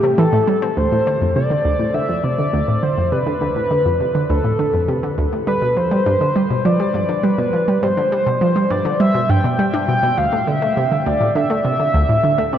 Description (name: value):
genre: ambient, sequencer-driven space music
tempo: 102 BPM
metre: 4/4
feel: straight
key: D dorian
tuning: A4 = 440 Hz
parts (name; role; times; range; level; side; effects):
- pulse-width lead; melody; 0.0-12.6 s; G4 to G5; -18 LUFS; equal; chorus, ping-pong delay
- analog pluck; riff; 0.0-12.6 s; D2 to D4; -18 LUFS; right 1 dB; chorus, ping-pong delay
room: wet huge ambient reverb, RT60 7.5 s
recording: worn, warbling old tape, cassette tape, warbly pitch drift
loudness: -15 LUFS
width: side -10 dB against mid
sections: 0.8-12.6 A section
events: none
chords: 0.0 Am7; 0.8 Dm; 5.5 G; 10.2 D5